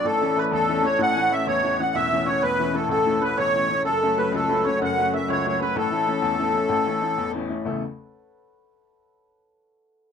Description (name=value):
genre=celtic folk, Celtic slide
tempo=126 BPM (dotted quarters)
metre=12/8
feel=straight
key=A major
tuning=A4 = 440 Hz
part: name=accordion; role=melody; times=0.0-7.3 s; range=A4 to F#5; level=-23 LUFS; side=equal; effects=light tremolo tuning
part: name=hammered dulcimer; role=second line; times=0.0-8.4 s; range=A4 to F#5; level=-28 LUFS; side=right 3 dB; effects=none
part: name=mellow trumpet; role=second line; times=0.0-7.3 s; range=A4 to G#5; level=-30 LUFS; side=left 5 dB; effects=none
part: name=bright upright piano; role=accompaniment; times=0.0-7.8 s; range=E1 to A4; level=-26 LUFS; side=left 4 dB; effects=none
room=light reverb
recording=minimal, uncompressed stereo recording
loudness=-20 LUFS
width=side -7 dB against mid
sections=0.0-7.6 A section; 7.6-9.5 B section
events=none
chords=0.0 A; 3.8 F#m; 5.8 A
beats=| 0.04 0.52 1.00 1.47 | 1.95 2.42 2.90 3.37 | 3.85 4.33 4.80 5.28 | 5.75 6.22 6.70 7.17 | 7.65 8.12